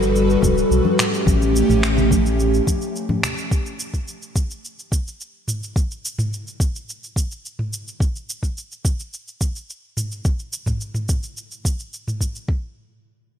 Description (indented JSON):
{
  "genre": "sunset chillout",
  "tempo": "107 BPM",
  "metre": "4/4",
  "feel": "straight",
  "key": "unclear",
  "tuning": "A4 = 441 Hz",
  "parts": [
    { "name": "airy breathy pad", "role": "sustained chords", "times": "0.0-3.5 s", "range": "G3 to B4", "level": "-19 LUFS", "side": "equal", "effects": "chorus" },
    { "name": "round analog bass", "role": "bass", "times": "0.0-2.6 s", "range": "D1 to B1", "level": "-20 LUFS", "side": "equal", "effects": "none" },
    { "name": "smooth R&B drum kit", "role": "drums", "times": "0.0-12.5 s", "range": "finger snaps, shaker, toms", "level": "-25 LUFS", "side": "equal", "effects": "none" },
    { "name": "electronic kick drum", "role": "drums", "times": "0.4-12.6 s", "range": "none", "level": "-21 LUFS", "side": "equal", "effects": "none" },
    { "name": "congas", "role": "percussion", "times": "0.4-3.3 s", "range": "none", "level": "-26 LUFS", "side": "left 2 dB", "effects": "none" }
  ],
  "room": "moderate lush hall reverb, RT60 2.7 s",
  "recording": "dreamy mix soaked in reverb",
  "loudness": "-19 LUFS",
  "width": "side -8 dB against mid",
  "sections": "0.0-12.5 A section",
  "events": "none",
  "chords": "0.0 Gmaj9; 1.0 A7; 3.5 N.C."
}